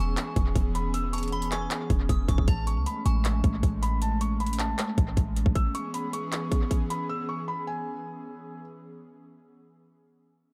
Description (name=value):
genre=hip hop, trap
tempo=156 BPM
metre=4/4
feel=half-time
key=E major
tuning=A4 = 443 Hz
part: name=felt-muted upright piano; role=melody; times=0.0-8.6 s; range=G#5 to E6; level=-37 LUFS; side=equal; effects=tape echo
part: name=delicate synth tine bell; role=second line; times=0.0-4.0 s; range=G#5 to D#6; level=-44 LUFS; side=equal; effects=chorus, phaser, tape echo
part: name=airy breathy pad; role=sustained chords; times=0.0-8.6 s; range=E3 to G#4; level=-36 LUFS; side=equal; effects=chorus
part: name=clean 808-style bass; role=bass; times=0.0-5.6 s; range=E1 to C#2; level=-29 LUFS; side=equal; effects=none
part: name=trap drum kit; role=drums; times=0.2-7.0 s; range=handclaps, hi-hat, kick drum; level=-30 LUFS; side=equal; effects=overdrive
room=little or no reverb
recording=echo-heavy mix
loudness=-27 LUFS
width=mono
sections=0.0-8.6 A section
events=none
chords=0.0 E6; 2.5 Amaj7; 5.6 E6